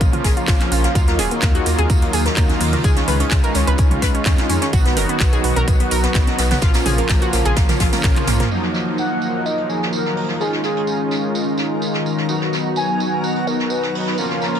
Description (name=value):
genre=progressive house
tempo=127 BPM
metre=4/4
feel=straight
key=Eb minor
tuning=A4 = 440 Hz
part: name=lush unison pad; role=sustained chords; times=0.0-14.6 s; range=Db3 to F#4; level=-25 LUFS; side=left 2 dB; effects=chorus, phaser, vintage 12-bit sampler grit, sidechain pumping
part: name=analog pluck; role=arpeggios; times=0.0-8.5 s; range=Bb3 to Cb5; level=-24 LUFS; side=equal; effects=chorus, sidechain pumping, ping-pong delay
part: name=soft supersaw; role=stabs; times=0.0-14.6 s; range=F3 to F#4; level=-23 LUFS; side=right 1 dB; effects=lush chorus, sidechain pumping, ping-pong delay
part: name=dark detuned saw bass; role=bass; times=0.0-8.4 s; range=Eb1 to F2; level=-21 LUFS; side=equal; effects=sidechain pumping
part: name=electronic kick drum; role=drums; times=0.0-8.1 s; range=none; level=-16 LUFS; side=equal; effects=none
part: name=house drum kit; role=drums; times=0.0-8.5 s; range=handclaps, hi-hat, toms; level=-26 LUFS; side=right 1 dB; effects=sidechain pumping on hats, sidechain pumping on toms
part: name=vintage brush drum kit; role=drums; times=0.0-14.6 s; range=hi-hat, snare drum, tambourine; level=-28 LUFS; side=right 1 dB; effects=sidechain pumping on hats, high-pass filter on hats, low-pass filter on hats, soft clipping on snare, high-pass filter on snare, low-pass filter on snare, sidechain pumping on perc, high-pass filter on perc, low-pass filter on perc, high-pass filter on room, low-pass filter on room
part: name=electronic toms and congas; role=percussion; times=0.1-8.3 s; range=none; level=-28 LUFS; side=right 3 dB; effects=sidechain pumping on perc, sidechain pumping on toms
part: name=backwards swelling texture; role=texture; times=9.5-14.6 s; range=Bb4 to Bb5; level=-31 LUFS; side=left 1 dB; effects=built-in reverb, sidechain pumping
part: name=warm velvety synth lead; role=melody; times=9.0-14.6 s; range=Ab4 to Ab5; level=-24 LUFS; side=equal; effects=chorus, tape echo
room=light reverb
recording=dense, heavily limited modern master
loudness=-15 LUFS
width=side -9 dB against mid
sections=0.0-8.5 A section; 8.5-14.6 B section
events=drum fill 7.8-8.5; filter sweep on analog synth pad 8.5-14.6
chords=0.0 Bbm; 1.0 Ebmadd9; 2.8 Dbadd9; 4.7 B; 6.6 Bbm; 8.5 Ebmadd9; 10.4 Dbadd9; 12.3 B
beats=0.01 0.48 | 0.95 1.43 1.90 2.37 | 2.84 3.31 3.79 4.26 | 4.73 5.21 5.68 6.15 | 6.62 7.09 7.57 8.04 | 8.51 8.98 9.46 9.93 | 10.40 10.87 11.35 11.82 | 12.29 12.76 13.24 13.71 | 14.18